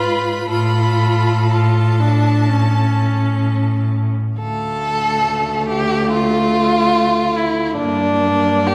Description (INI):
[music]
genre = classical, slow romantic movement for string quartet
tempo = 59-73 BPM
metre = 4/4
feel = rubato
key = D minor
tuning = A4 = 440 Hz
[part]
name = clear violin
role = melody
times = 0.0-8.7 s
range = D5 to B5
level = -30 LUFS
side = equal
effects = none
[part]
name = rich violin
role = second line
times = 0.0-8.7 s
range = D4 to B4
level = -21 LUFS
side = equal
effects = none
[part]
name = rich viola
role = accompaniment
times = 0.0-8.7 s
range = A3 to F4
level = -23 LUFS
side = equal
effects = none
[part]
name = rich cello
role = bass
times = 0.0-8.7 s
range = D2 to A2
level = -20 LUFS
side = equal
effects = none
[sound]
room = wet recital hall reverb, RT60 1.7 s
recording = heard from further back in the room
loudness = -17 LUFS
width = mono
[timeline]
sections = 0.0-4.4 A section; 4.4-8.7 B section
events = none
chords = 0.0 C#7/G# (rootless); 0.5 Dm/A; 2.5 A; 4.4 Dm; 7.8 Gm